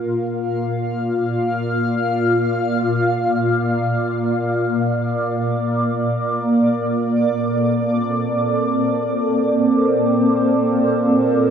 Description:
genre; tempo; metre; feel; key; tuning
ambient; free time; none; none; Bb major; A4 = 442 Hz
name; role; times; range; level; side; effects
shimmering ambient pad; solo; 0.0-11.5 s; Bb2 to F5; -17 LUFS; equal; chorus, built-in reverb, phaser, tape echo
room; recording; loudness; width
wet huge ambient reverb, RT60 7.3 s; none; -17 LUFS; side -7 dB against mid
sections
0.0-5.2 A section; 5.2-11.5 B section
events
none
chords
0.0 Bb; 5.2 Bbmaj9

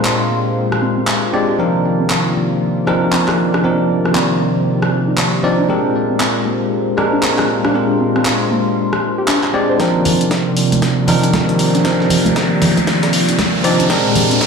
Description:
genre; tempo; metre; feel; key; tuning
deep house; 117 BPM; 4/4; swing 61% on 16ths; C minor; A4 = 436 Hz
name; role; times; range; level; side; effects
warm analog pad; sustained chords; 0.0-14.5 s; Bb2 to D5; -20 LUFS; equal; chorus, sidechain pumping
bell-like tine electric piano; stabs; 0.0-14.5 s; F3 to D5; -17 LUFS; equal; medium stereo tremolo, sidechain pumping, ping-pong delay
deep house drum kit; drums; 0.0-14.5 s; handclaps, hi-hat, rim click, snare drum; -20 LUFS; equal; high-pass filter on snare, high-pass filter on hats, high-pass filter on room
deep dark ambient pad; texture; 0.0-14.5 s; C4 to C6; -25 LUFS; equal; chorus, built-in reverb, sidechain pumping
warbly dusty pluck; arpeggios; 0.1-14.5 s; Bb3 to C5; -24 LUFS; equal; none
breakbeat sampler-style drum kit; drums; 9.8-14.5 s; hi-hat, snare drum; -26 LUFS; left 1 dB; high-pass filter on hats, high-pass filter on snare
electronic kick drum; drums; 9.8-14.5 s; none; -25 LUFS; right 1 dB; none
riser; sound effects; 10.7-14.5 s; none; -22 LUFS; right 1 dB; none
congas; percussion; 10.1-14.3 s; none; -20 LUFS; right 3 dB; none
room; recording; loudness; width
moderate plate reverb, RT60 2.0 s; played on a big sound system in a bare room, large studio reverb; -13 LUFS; side -5 dB against mid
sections
0.0-9.8 A section; 9.8-14.5 B section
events
filter sweep on synth pluck 0.0-9.8; build-up 9.8-14.5; drum fill 9.8-14.5; riser 10.7-14.5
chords
0.0 Bb13; 1.6 Cm11; 5.7 Bb13; 9.8 Cm11; 13.9 Bb13

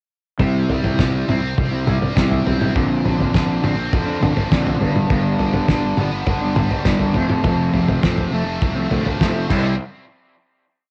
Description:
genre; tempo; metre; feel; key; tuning
indie rock; 102 BPM; 4/4; straight; C major; A4 = 440 Hz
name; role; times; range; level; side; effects
mellow electric guitar; riff; 0.4-9.7 s; F2 to E4; -22 LUFS; equal; cassette tape
overdriven electric guitar; riff; 0.4-9.7 s; F2 to E4; -28 LUFS; equal; analog chorus, cassette tape, tape echo
fuzz fingered electric bass; bass; 0.4-9.8 s; F1 to F2; -28 LUFS; equal; none
cloth-damped thuddy drum kit; drums; 0.4-9.6 s; crash cymbal, kick drum, snare drum, toms; -22 LUFS; equal; cassette tape
room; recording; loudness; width
light reverb; home recording on cassette; -19 LUFS; mono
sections
0.4-9.8 verse; 9.8-10.9 final hit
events
drum fill 9.5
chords
0.4 C; 2.8 Bbadd9; 4.8 G; 7.2 F; 9.5 C; 9.8 N.C.

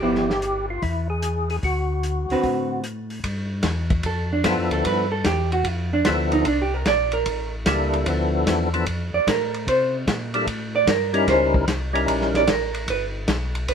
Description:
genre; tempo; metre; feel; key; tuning
soul jazz organ trio; 149 BPM; 4/4; swing 67% on 8ths; unclear; A4 = 440 Hz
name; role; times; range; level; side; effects
percussive tonewheel organ; melody; 0.0-12.5 s; F3 to Bb4; -23 LUFS; left 2 dB; slow rotary speaker, chorus vibrato
vintage hollow-body jazz guitar; accompaniment; 0.0-13.7 s; D3 to D5; -22 LUFS; right 3 dB; none
mellow tonewheel organ; bass; 0.0-13.7 s; G1 to C3; -26 LUFS; left 1 dB; slow rotary speaker
warm soul drum kit; drums; 0.2-13.7 s; hi-hat, kick drum, ride cymbal, snare drum; -26 LUFS; equal; none
room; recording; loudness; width
light reverb; band playing live in one room; -20 LUFS; side -7 dB against mid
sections
0.0-3.2 A section; 3.2-13.7 B section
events
hollow-body jazz guitar solo 3.2-13.7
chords
0.0 G6; 0.8 E; 1.6 D6; 3.2 G13; 6.5 C13; 8.1 Dm69; 9.7 C13; 11.3 C#dim7; 12.9 Gadd9

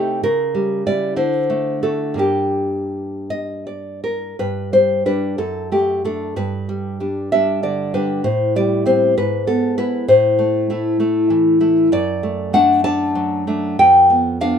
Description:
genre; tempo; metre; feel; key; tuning
romantic piece for solo classical guitar; 53-67 BPM (dotted quarters); 6/8; rubato; G minor, G major from 4.4 s; A4 = 440 Hz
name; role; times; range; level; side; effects
nylon-string guitar; solo; 0.0-14.6 s; F2 to A5; -15 LUFS; equal; none
room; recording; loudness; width
moderate studio reverb, RT60 0.6 s; minimal, uncompressed stereo recording; -15 LUFS; side -7 dB against mid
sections
0.0-4.4 A section; 4.4-14.6 B section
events
none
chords
0.2 C#dim7; 1.2 D7; 2.2 Gm; 4.4 G5; 5.4 D/F#; 6.4 G; 8.2 Am7; 9.2 E/G#; 10.1 Am; 11.9 D/F#; 13.8 G7/F

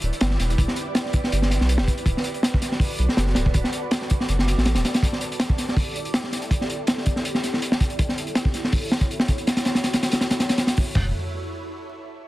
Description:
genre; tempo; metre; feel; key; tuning
drum and bass, jungle; 162 BPM; 4/4; straight; E dorian; A4 = 440 Hz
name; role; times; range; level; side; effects
ethereal airy pad; sustained chords; 0.0-11.1 s; E4 to D5; -32 LUFS; right 1 dB; ensemble chorus, built-in reverb, phaser
saturated sub bass; bass; 0.0-4.8, 11.0-11.1 s; D1 to B1; -22 LUFS; equal; none
crunchy breakbeat drum kit; drums; 0.0-11.0 s; china cymbal, hi-hat, kick drum, snare drum, toms; -21 LUFS; equal; none
room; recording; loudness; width
small room ambience; dense, heavily limited modern master, vinyl crackle; -20 LUFS; side -17 dB against mid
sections
0.0-11.0 A section; 11.0-12.3 B section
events
filter sweep on ambient pad 0.0-11.0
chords
0.0 Em7; 2.1 D6; 5.0 A7sus4; 8.0 F#m7; 11.0 Em7

